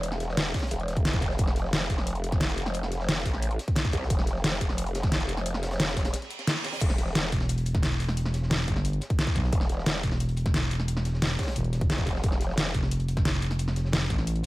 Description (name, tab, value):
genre	dark technical drum and bass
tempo	177 BPM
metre	4/4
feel	straight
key	unclear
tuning	A4 = 440 Hz
part	growl bass	bass	0.0-7.3, 9.5-12.7 s	E1 to C2	-30 LUFS	equal	chorus, overdrive, sidechain pumping
part	crunchy breakbeat drum kit	drums	0.0-14.5 s	hi-hat, snare drum	-40 LUFS	equal	high-pass filter on hats, high-pass filter on snare, high-pass filter on room
part	dubstep drum kit	drums	0.0-14.4 s	crash cymbal, hi-hat, snare drum	-29 LUFS	equal	none
part	electronic kick drum	drums	0.5-14.2 s	none	-27 LUFS	equal	none
part	reverse cymbal	sound effects	6.2-6.8 s	none	-37 LUFS	right 5 dB	none
part	growling FM bass	bass	7.3-14.4 s	E1 to B1	-27 LUFS	equal	none
room	little or no reverb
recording	none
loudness	-24 LUFS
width	side -18 dB against mid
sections	0.0-14.5 A section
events	break 6.1-6.8; reverse cymbal 6.2-6.8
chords	0.0 N.C.; 12.2 F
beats	| 0.03 0.37 0.71 1.05 | 1.39 1.73 2.07 2.41 | 2.75 3.08 3.42 3.76 | 4.10 4.44 4.78 5.12 | 5.46 5.80 6.14 6.47 | 6.81 7.15 7.49 7.83 | 8.17 8.51 8.85 9.19 | 9.53 9.86 10.20 10.54 | 10.88 11.22 11.56 11.90 | 12.24 12.58 12.91 13.25 | 13.59 13.93 14.27